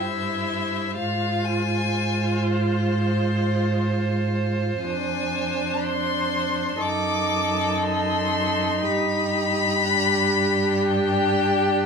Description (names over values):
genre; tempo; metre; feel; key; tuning
classical, slow romantic movement for string quartet; free time; none; none; F minor; A4 = 440 Hz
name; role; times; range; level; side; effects
clear violin; melody; 0.0-11.9 s; C5 to D6; -26 LUFS; left 5 dB; none
rich violin; second line; 0.0-11.9 s; G4 to C5; -27 LUFS; left 1 dB; none
rich viola; accompaniment; 0.0-11.9 s; D4 to F4; -27 LUFS; right 2 dB; none
rich cello; bass; 0.0-11.9 s; F2 to Ab2; -26 LUFS; right 2 dB; none
room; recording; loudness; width
light reverb; small room ambience; -20 LUFS; side -5 dB against mid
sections
0.0-11.9 A section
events
none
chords
0.0 C/G; 0.9 Fm/Ab; 4.8 Dm7b5/F; 6.8 F#dim7; 8.8 G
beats
free time